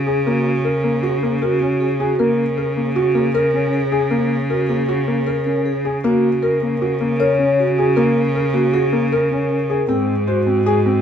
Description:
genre	contemporary instrumental, chamber music in an uneven meter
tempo	156 BPM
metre	5/4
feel	straight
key	unclear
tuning	A4 = 440 Hz
part	vibraphone with soft mallets	second line	0.0-11.0 s	F#4 to C#5	-20 LUFS	right 1 dB	none
part	rich cello	bass	0.0-11.0 s	G#2 to C#3	-21 LUFS	right 1 dB	none
part	felt-muted upright piano	arpeggios	0.1-11.0 s	A#3 to B#4	-20 LUFS	left 2 dB	none
room	moderate studio ambience, RT60 0.5 s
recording	dark, warm production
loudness	-16 LUFS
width	side -8 dB against mid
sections	0.0-11.0 A section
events	none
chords	0.0 F#add9/C#; 9.9 G#7

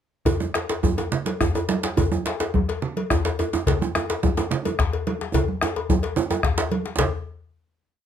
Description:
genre	west african traditional, West African drum ensemble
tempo	143 BPM (dotted quarters)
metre	12/8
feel	straight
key	none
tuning	none
part	bombo	percussion	0.3-7.1 s	none	-24 LUFS	left 2 dB	none
part	congas	percussion	0.3-7.1 s	none	-27 LUFS	right 6 dB	none
part	cowbell	percussion	0.3-7.1 s	none	-30 LUFS	left 5 dB	none
part	djembe	percussion	0.3-7.1 s	none	-28 LUFS	left 5 dB	none
part	djembe	percussion	0.3-7.1 s	none	-25 LUFS	right 6 dB	none
room	light reverb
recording	close, detailed microphones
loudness	-21 LUFS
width	side -9 dB against mid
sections	0.3-7.0 A section; 7.0-8.1 final hit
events	speeding up 0.3-8.1; drum fill 5.4-7.0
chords	none

